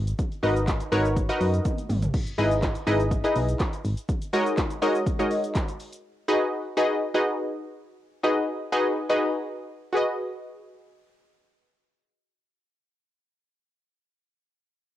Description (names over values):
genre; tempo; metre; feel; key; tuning
dance-pop; 123 BPM; 4/4; straight; G# minor; A4 = 440 Hz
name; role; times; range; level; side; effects
solid FM bass; bass; 0.0-3.9 s; G#1 to F#2; -26 LUFS; equal; sidechain pumping
deep house drum kit; drums; 0.1-6.0 s; crash cymbal, handclaps, hi-hat, kick drum, shaker, snare drum, toms; -28 LUFS; equal; cassette tape
analog pluck; accompaniment; 0.4-13.6 s; G#3 to D#5; -24 LUFS; equal; chorus, sidechain pumping, cassette tape, plate reverb
room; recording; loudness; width
moderate small room reverb, RT60 0.5 s; home recording on cassette; -23 LUFS; side -12 dB against mid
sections
0.0-9.9 A section; 9.9-13.8 B section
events
drum fill 1.6-2.1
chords
0.2 Bmaj7/G#; 2.1 Emaj7/G#; 4.1 D#m7/G#; 6.0 G#m7